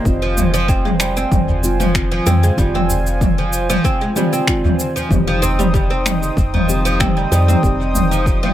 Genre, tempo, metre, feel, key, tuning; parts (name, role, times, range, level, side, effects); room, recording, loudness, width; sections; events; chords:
organic downtempo; 95 BPM; 4/4; straight; F minor; A4 = 441 Hz
deep mellow chord stab; accompaniment; 0.0-8.5 s; Eb3 to G4; -25 LUFS; left 1 dB; chorus, cassette tape, sidechain pumping, tape echo
warm analog pad; sustained chords; 0.0-8.5 s; Eb4 to Eb6; -24 LUFS; right 1 dB; chorus, sidechain pumping
oud; arpeggios; 0.0-8.5 s; F3 to C4; -21 LUFS; right 2 dB; dub echo
woody FM bass; bass; 0.1-8.5 s; F1 to F2; -19 LUFS; equal
electronic kick drum; drums; 0.1-8.4 s; -19 LUFS; equal; overdrive
organic electronic drum kit; drums; 0.1-8.5 s; cabasa, finger snaps, toms; -20 LUFS; equal; overdrive
udu; percussion; 0.4-8.1 s; -24 LUFS; equal; tape echo
light reverb, digital ambience; echo-heavy mix; -14 LUFS; side -12 dB against mid
0.0-8.5 A section
0.1 Fm7; 5.1 Cm/F